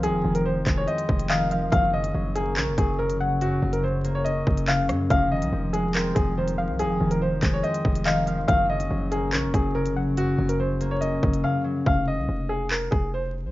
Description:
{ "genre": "hip hop, drill", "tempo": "142 BPM", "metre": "4/4", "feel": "half-time", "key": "F phrygian", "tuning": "A4 = 440 Hz", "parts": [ { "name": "warm upright piano", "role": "melody", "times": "0.0-13.3 s", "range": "Gb4 to F5", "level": "-27 LUFS", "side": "equal", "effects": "low-pass filter" }, { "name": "soft round pluck", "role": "second line", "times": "0.0-3.4, 6.6-10.2 s", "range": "Eb5 to Gb5", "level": "-33 LUFS", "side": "left 2 dB", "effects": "chorus, ping-pong delay" }, { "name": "concert harp", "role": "accompaniment", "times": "0.0-13.5 s", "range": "F2 to Db4", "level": "-26 LUFS", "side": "left 1 dB", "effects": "low-pass filter" }, { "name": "hard-hitting 808-style bass", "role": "bass", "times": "0.0-13.5 s", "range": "F1 to Gb2", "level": "-28 LUFS", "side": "equal", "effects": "none" }, { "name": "drill drum kit", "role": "drums", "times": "0.0-13.0 s", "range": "handclaps, hi-hat, kick drum, rim click", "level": "-25 LUFS", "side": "equal", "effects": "none" } ], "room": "digital ambience", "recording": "rough home demo mix, vinyl crackle, nothing above 7.5 kHz", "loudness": "-21 LUFS", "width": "side -17 dB against mid", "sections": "0.0-11.9 A section; 11.9-13.5 B section", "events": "drums muted 11.4-11.9; hi-hats muted 11.9-13.5", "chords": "0.0 Fm7; 1.7 Gb; 5.1 Fm7; 8.5 Gb; 11.9 F5", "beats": "| 0.03 0.46 0.88 1.30 | 1.72 2.15 2.57 2.99 | 3.41 3.83 4.26 4.68 | 5.10 5.53 5.95 6.37 | 6.79 7.21 7.64 8.06 | 8.48 8.91 9.33 9.75 | 10.17 10.60 11.02 11.44 | 11.86 12.29 12.71 13.13" }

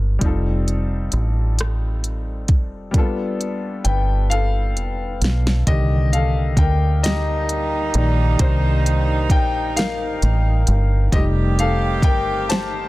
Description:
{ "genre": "slow six-eight R&B", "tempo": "44 BPM (dotted quarters)", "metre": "6/8", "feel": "straight", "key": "C dorian", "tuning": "A4 = 440 Hz", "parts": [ { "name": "warm grand piano", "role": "accompaniment", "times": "0.0-12.9 s", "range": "D3 to A5", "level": "-24 LUFS", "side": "left 4 dB", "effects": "none" }, { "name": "deep dub fingered electric bass", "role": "bass", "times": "0.0-12.9 s", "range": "F1 to D2", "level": "-19 LUFS", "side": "equal", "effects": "none" }, { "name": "smooth R&B drum kit", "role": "drums", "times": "0.2-12.7 s", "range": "hi-hat, kick drum, rim click, snare drum", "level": "-19 LUFS", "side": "equal", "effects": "soft clipping on snare" }, { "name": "clear horn section", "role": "stabs", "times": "7.0-12.9 s", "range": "Eb3 to G4", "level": "-25 LUFS", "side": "right 4 dB", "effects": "digital delay" } ], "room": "small room ambience", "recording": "dense, heavily limited modern master", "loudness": "-17 LUFS", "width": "side -18 dB against mid", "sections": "0.0-5.7 A section; 5.7-12.9 B section", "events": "drum fill 2.9-5.7; grand piano solo 5.7-12.9", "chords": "0.2 F9; 2.9 G9; 5.7 Cm9; 11.1 F9", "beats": "| 0.21 1.58 | 2.94 4.31 | 5.67 7.03 | 8.40 9.76 | 11.12 12.49" }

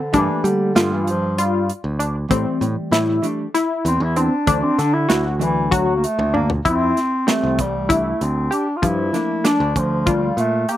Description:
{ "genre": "progressive instrumental, band music in an uneven meter", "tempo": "193 BPM (eighths)", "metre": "7/8", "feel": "straight", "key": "G dorian", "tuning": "A4 = 438 Hz", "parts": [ { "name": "warm bass clarinet", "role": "melody", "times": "0.0-10.8 s", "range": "D3 to F4", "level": "-21 LUFS", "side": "equal", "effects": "slapback echo" }, { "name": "hollow-body jazz guitar", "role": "accompaniment", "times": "0.1-10.3 s", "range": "E3 to D4", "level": "-25 LUFS", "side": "equal", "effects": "double-tracked left and right, slapback echo" }, { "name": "tight sequenced synth", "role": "arpeggios", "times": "0.1-10.8 s", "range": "F3 to G4", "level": "-20 LUFS", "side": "left 2 dB", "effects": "chorus" }, { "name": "modern bright picked electric bass", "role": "bass", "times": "0.1-10.6 s", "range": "C2 to G3", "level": "-22 LUFS", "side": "right 1 dB", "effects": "none" }, { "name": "modern studio drum kit", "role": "drums", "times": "0.1-10.8 s", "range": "hi-hat, kick drum, snare drum, toms", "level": "-22 LUFS", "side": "right 1 dB", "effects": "none" } ], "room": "little or no reverb", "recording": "recorded outdoors, with no room sound", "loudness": "-17 LUFS", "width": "side -13 dB against mid", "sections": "0.0-6.7 A section; 6.7-10.8 B section", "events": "bass clarinet solo 0.0-6.7; drum fill 6.2-6.7", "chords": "0.1 Gm7; 2.3 Am7; 4.5 D; 6.7 Fmaj7; 8.8 Gm7", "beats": "| 0.14 0.45 0.76 1.07 1.38 1.69 2.00 | 2.31 2.62 2.93 3.24 3.55 3.86 4.17 | 4.48 4.79 5.10 5.41 5.72 6.03 6.34 | 6.65 6.96 7.27 7.58 7.89 8.20 8.51 | 8.82 9.13 9.45 9.76 10.06 10.38 10.69" }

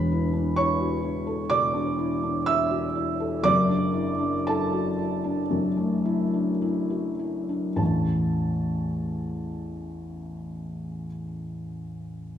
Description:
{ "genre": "neoclassical minimalist piano", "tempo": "50-66 BPM", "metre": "4/4", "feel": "rubato", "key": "A major", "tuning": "A4 = 440 Hz", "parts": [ { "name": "felt-muted upright piano", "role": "solo", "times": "0.0-12.4 s", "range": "E1 to E6", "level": "-24 LUFS", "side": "equal", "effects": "none" } ], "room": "wet recital hall reverb, RT60 1.6 s", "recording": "recorded in a church or concert hall", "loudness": "-23 LUFS", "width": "side -9 dB against mid", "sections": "0.0-7.8 A section; 7.8-12.3 B section", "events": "slowing down 0.0-7.8", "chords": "0.0 E7sus4; 3.5 Dadd9/F#; 7.8 A", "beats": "0.55 1.49 2.47 | 3.45 4.46 5.52 6.62 | 7.80 8.92 10.04 11.16" }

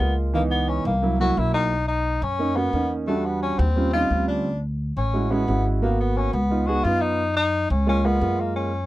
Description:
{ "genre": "Afro-Cuban jazz", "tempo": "175 BPM", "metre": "4/4", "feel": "straight", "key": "F# major", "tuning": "A4 = 436 Hz", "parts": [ { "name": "warm tenor saxophone", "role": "melody", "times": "0.0-8.9 s", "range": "A3 to F#4", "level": "-25 LUFS", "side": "left 2 dB", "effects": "none" }, { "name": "warm grand piano", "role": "accompaniment", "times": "0.0-8.7 s", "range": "E3 to G#4", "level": "-25 LUFS", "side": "right 3 dB", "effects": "none" }, { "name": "upright bass", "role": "bass", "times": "0.0-8.9 s", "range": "G#1 to F#2", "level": "-24 LUFS", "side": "equal", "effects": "none" } ], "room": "little or no reverb", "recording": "dry, close 1970s-style studio recording", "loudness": "-20 LUFS", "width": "side -16 dB against mid", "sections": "0.0-8.9 A section", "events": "none", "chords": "0.3 C#m9; 1.0 C7#11; 1.7 Bmaj9; 3.1 Em7; 3.8 D#13; 4.5 Dmaj9#11; 5.8 G#m9; 6.5 C#7; 7.2 F#maj9", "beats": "0.00 | 0.34 0.68 1.03 1.37 | 1.71 2.06 2.40 2.74 | 3.08 3.43 3.77 4.11 | 4.46 4.80 5.14 5.48 | 5.83 6.17 6.51 6.85 | 7.19 7.54 7.88 8.22 | 8.56" }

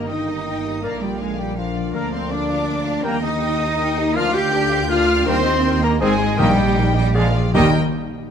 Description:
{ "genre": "classical, dramatic, fast romantic movement for symphony orchestra", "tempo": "162 BPM", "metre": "3/4", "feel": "straight", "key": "Eb major", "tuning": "A4 = 440 Hz", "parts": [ { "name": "warm symphonic violin section", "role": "melody", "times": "0.0-7.8 s", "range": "D5 to Ab5", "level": "-30 LUFS", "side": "left 4 dB", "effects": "none" }, { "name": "hollow concert flute", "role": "second line", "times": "0.0-7.8 s", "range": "Eb5 to G6", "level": "-28 LUFS", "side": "left 1 dB", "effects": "none" }, { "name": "warm symphonic violin section", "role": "second line", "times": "0.0-7.8 s", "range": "Eb5 to G6", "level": "-32 LUFS", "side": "left 2 dB", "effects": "none" }, { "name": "rich symphonic viola section", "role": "accompaniment", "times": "0.0-7.8 s", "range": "D4 to Eb5", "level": "-31 LUFS", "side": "left 2 dB", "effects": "none" }, { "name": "clear trombone section", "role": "sustained chords", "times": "0.0-7.7 s", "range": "D3 to C4", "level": "-29 LUFS", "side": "right 3 dB", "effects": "none" }, { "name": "mellow French horn section", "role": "sustained chords", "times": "0.0-7.7 s", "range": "F3 to G4", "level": "-28 LUFS", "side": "left 4 dB", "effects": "none" }, { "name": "concert harp", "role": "arpeggios", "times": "0.0-7.8 s", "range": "G2 to Bb5", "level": "-29 LUFS", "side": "left 11 dB", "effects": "none" }, { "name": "warm trumpet", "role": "stabs", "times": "0.0-7.7 s", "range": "F4 to G5", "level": "-29 LUFS", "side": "right 2 dB", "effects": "none" }, { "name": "rich symphonic cello section", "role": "bass", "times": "0.0-7.8 s", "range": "Eb3 to G4", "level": "-23 LUFS", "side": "right 1 dB", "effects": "none" }, { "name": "rich symphonic double bass section", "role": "bass", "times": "0.0-7.8 s", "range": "G1 to Eb2", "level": "-23 LUFS", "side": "right 3 dB", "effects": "none" }, { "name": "clear oboe", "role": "second line", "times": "0.8-7.7 s", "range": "D5 to G5", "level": "-32 LUFS", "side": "right 2 dB", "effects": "none" }, { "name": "dark clarinet", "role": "second line", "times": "0.8-7.7 s", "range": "G4 to C5", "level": "-29 LUFS", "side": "left 3 dB", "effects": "none" }, { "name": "timpani", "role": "percussion", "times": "6.4-7.7 s", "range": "Bb2 to Eb3", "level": "-22 LUFS", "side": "left 2 dB", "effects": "none" } ], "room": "moderate concert hall reverb, RT60 1.8 s", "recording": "none", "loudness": "-16 LUFS", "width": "side -8 dB against mid", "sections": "0.0-7.5 A section", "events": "none", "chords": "0.0 Eb/G; 0.8 Bb; 1.9 Bb/D; 3.0 Eb; 4.2 Bb/D; 5.3 Eb; 6.0 Ab; 6.4 Eb/Bb; 7.2 Bb7; 7.5 Eb", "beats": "0.10 0.47 | 0.84 1.21 1.58 | 1.95 2.31 2.68 | 3.05 3.42 3.80 | 4.17 4.54 4.90 | 5.27 5.65 6.02 | 6.39 6.77 7.16 | 7.55" }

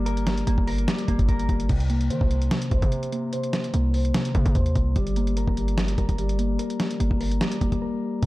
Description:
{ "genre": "hip hop, trap", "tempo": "147 BPM", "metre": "4/4", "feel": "half-time", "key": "unclear", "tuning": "A4 = 442 Hz", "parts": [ { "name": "mellow electric guitar", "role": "arpeggios", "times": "0.0-8.3 s", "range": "C3 to C5", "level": "-27 LUFS", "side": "left 1 dB", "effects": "low-pass filter, ping-pong delay" }, { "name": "hard-hitting 808-style bass", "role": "bass", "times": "0.0-8.3 s", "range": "G1 to Eb3", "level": "-25 LUFS", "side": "equal", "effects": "none" }, { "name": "dusty soul sampler-style drum kit", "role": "drums", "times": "0.1-8.3 s", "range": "crash cymbal, hi-hat, kick drum, snare drum", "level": "-25 LUFS", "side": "equal", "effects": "none" } ], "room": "light reverb", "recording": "dark, warm production", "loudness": "-21 LUFS", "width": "side -18 dB against mid", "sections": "0.0-1.7 A section; 1.7-8.3 B section", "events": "filter sweep on clean electric guitar 1.7-8.3; break 7.8-8.2", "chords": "0.0 Gm; 1.7 C7(no3); 5.0 Gm", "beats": "| 0.06 0.47 0.88 1.29 | 1.70 2.10 2.51 2.92 | 3.33 3.74 4.14 4.55 | 4.96 5.37 5.78 6.18 | 6.59 7.00 7.41 7.82 | 8.23" }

